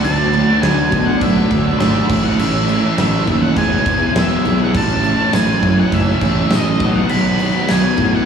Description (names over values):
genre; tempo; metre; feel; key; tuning
classic rock; 102 BPM; 4/4; straight; unclear; A4 = 441 Hz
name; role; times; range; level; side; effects
octave-fuzz lead guitar; melody; 0.0-8.3 s; D#5 to B5; -21 LUFS; right 1 dB; distortion, slapback echo
raw garage guitar; riff; 0.0-8.3 s; A2 to F#4; -17 LUFS; equal; overdrive, slapback echo
growling fingered electric bass; bass; 0.0-8.2 s; E1 to B2; -18 LUFS; right 1 dB; overdrive
huge arena drum kit; drums; 0.0-8.1 s; crash cymbal, kick drum, snare drum; -19 LUFS; equal; none
tambourine; percussion; 5.4-7.8 s; none; -35 LUFS; right 3 dB; none
room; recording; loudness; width
studio reverb; live gig heard through the venue's PA, recital hall reverb, small room ambience; -13 LUFS; side -7 dB against mid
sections
0.0-8.3 A section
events
none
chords
0.0 D; 2.1 A; 3.6 E; 4.7 A; 6.8 B